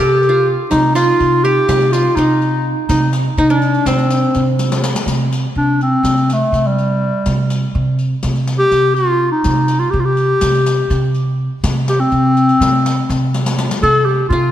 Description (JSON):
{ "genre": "Turkish makam ensemble", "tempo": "247 BPM (eighths)", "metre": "9/8", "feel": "straight", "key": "C makam huseyni", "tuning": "A4 = 441 Hz", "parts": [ { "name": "mellow clarinet", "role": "melody", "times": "0.0-14.5 s", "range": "G3 to A4-30c", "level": "-15 LUFS", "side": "left 1 dB", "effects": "none" }, { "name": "qanun", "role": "second line", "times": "0.0-5.5, 13.8-14.5 s", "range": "C4 to A4-30c", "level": "-19 LUFS", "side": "right 1 dB", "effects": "none" }, { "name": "upright bass", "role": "bass", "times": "0.0-14.5 s", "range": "C3", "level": "-17 LUFS", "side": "right 1 dB", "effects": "none" }, { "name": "riq", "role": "percussion", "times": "0.2-13.8 s", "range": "none", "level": "-25 LUFS", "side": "left 3 dB", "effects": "none" } ], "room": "moderate concert hall reverb, RT60 2.4 s", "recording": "none", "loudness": "-12 LUFS", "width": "side -11 dB against mid", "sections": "0.0-5.1 A section; 5.1-13.8 B section", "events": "drum fill 4.6-5.1, 13.3-13.8", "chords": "none", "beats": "0.22 0.47 | 0.71 0.95 1.19 1.44 1.68 1.92 2.16 2.40 2.65 | 2.89 3.13 3.37 3.62 3.86 4.10 4.34 4.59 4.83 | 5.07 5.32 5.56 5.80 6.04 6.29 6.53 6.77 7.01 | 7.26 7.50 7.74 7.99 8.23 8.47 8.72 8.96 9.20 | 9.45 9.69 9.93 10.18 10.42 10.66 10.90 11.15 11.39 | 11.63 11.88 12.12 12.37 12.61 12.85 13.10 13.34 13.58 | 13.83 14.07 14.31" }